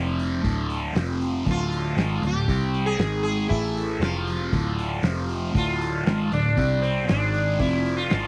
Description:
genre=psychedelic rock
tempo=117 BPM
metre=4/4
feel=straight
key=unclear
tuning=A4 = 440 Hz
part: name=sitar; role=melody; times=0.0-8.3 s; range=C4 to G#4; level=-31 LUFS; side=equal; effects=slapback echo
part: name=overdriven combo organ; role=sustained chords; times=0.0-8.3 s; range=D#3 to F6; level=-42 LUFS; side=equal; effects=none
part: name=thick fuzz guitar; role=riff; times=0.0-8.3 s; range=D2 to C4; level=-28 LUFS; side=equal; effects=distortion, phaser
part: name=picked electric bass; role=bass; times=0.0-8.3 s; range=D1 to C2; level=-30 LUFS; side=equal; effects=none
part: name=cloth-damped thuddy drum kit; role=drums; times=0.2-8.3 s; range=hi-hat, kick drum, snare drum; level=-29 LUFS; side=equal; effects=none
room=light reverb, small room ambience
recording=none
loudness=-24 LUFS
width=mono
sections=0.0-8.3 A section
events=none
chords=0.4 D5; 1.0 F5; 1.5 Dm; 2.5 C5; 3.0 G#5; 3.5 A5; 4.0 F5; 4.5 Dm; 5.0 F5; 5.6 Dm; 6.6 C5; 7.1 G#5; 7.6 F5

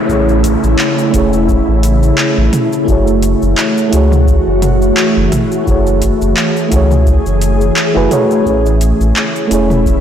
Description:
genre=sunset chillout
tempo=86 BPM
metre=4/4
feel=swing 55% on 16ths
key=unclear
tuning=A4 = 440 Hz
part: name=mellow FM electric piano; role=accompaniment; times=0.0-10.0 s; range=A3 to C#5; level=-16 LUFS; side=equal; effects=chorus, tremolo, auto-pan, digital delay
part: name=ethereal airy pad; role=sustained chords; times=0.0-10.0 s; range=C#3 to G#4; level=-15 LUFS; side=equal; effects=ensemble chorus, built-in reverb
part: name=downlifter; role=sound effects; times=0.0-2.9 s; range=none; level=-25 LUFS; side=left 1 dB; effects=none
part: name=warm sub bass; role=bass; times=0.1-10.0 s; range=E1 to C#2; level=-13 LUFS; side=equal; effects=tube saturation
part: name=deep house drum kit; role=drums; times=0.1-10.0 s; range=cabasa, handclaps, hi-hat, toms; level=-18 LUFS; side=equal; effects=overdrive
part: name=electronic kick drum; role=drums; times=0.1-10.0 s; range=none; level=-17 LUFS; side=equal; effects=none
room=moderate scoring stage reverb, RT60 1.9 s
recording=blown-out, overdriven recording, overdrive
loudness=-10 LUFS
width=side -9 dB against mid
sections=0.0-10.0 A section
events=none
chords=0.0 Amaj7; 2.9 F#m9; 8.5 Amaj7

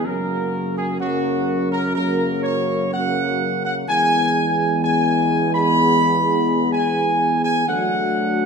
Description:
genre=classical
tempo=63 BPM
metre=4/4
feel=straight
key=E mixolydian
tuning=A4 = 439 Hz
part: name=dark trumpet section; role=melody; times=0.0-8.5 s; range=F#4 to B5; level=-20 LUFS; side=equal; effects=none
part: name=warm tuba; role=bass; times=0.0-8.5 s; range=D2 to F#2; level=-23 LUFS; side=right 1 dB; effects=none
part: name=dark trombone section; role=sustained chords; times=0.1-8.5 s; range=C#3 to A3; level=-27 LUFS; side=right 3 dB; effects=none
part: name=mellow French horn section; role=sustained chords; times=0.1-8.5 s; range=A#3 to A#4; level=-26 LUFS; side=left 3 dB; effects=none
room=wet concert hall reverb, RT60 2.1 s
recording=minimal, uncompressed stereo recording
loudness=-17 LUFS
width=side -6 dB against mid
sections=0.0-8.5 A section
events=none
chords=0.1 F#; 3.9 E; 7.7 D

